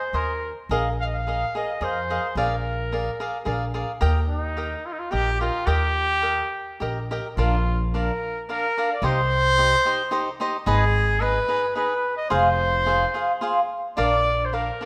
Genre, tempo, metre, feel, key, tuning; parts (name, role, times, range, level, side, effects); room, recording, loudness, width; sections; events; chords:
mexican folk, mariachi; 108 BPM; 3/4; straight; A4 = 439 Hz
clear trumpet; melody; 0.0-14.9 s; Eb4 to F5; -26 LUFS; equal
cavaquinho; accompaniment; 0.0-14.9 s; D4 to Bb5; -28 LUFS; equal
upright bass; bass; 0.1-14.7 s; F1 to F2; -28 LUFS; equal
moderate recital hall reverb, RT60 1.6 s; -23 LUFS; mono
0.0-7.4 A section; 7.4-14.9 B section
0.0 Abadd9; 0.7 Bb7sus4; 2.4 Bb7; 4.0 Eb; 7.4 Bb; 9.0 Cm; 10.7 Abm; 12.3 Fm; 14.0 Bb